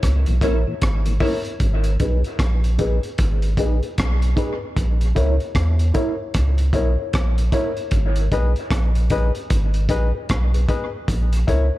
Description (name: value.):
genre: dub reggae.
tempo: 76 BPM.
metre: 4/4.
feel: swing 62% on 16ths.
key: G# minor.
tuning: A4 = 436 Hz.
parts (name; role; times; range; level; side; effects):
warm sub bass; bass; 0.0-11.7 s; G#1 to E2; -18 LUFS; equal; none.
crunchy breakbeat drum kit; drums; 0.0-11.7 s; hi-hat, kick drum, rim click; -23 LUFS; equal; none.
mellow tonewheel organ; accompaniment; 0.3-1.3 s; A#2 to E4; -31 LUFS; left 3 dB; slow rotary speaker.
electric guitar at the edge of break-up; accompaniment; 0.4-7.7 s; D#4 to C#5; -30 LUFS; right 4 dB; analog chorus, low-pass filter, dub echo.
warm upright piano; stabs; 0.4-11.7 s; D#4 to C#5; -27 LUFS; left 4 dB; low-pass filter, dub echo.
room: small room ambience.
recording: none.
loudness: -18 LUFS.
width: side -16 dB against mid.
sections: 0.0-1.6 A section; 1.6-11.8 B section.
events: none.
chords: 0.0 A#dim; 1.6 G#m; 4.8 A#dim; 7.9 G#m; 11.1 A#dim.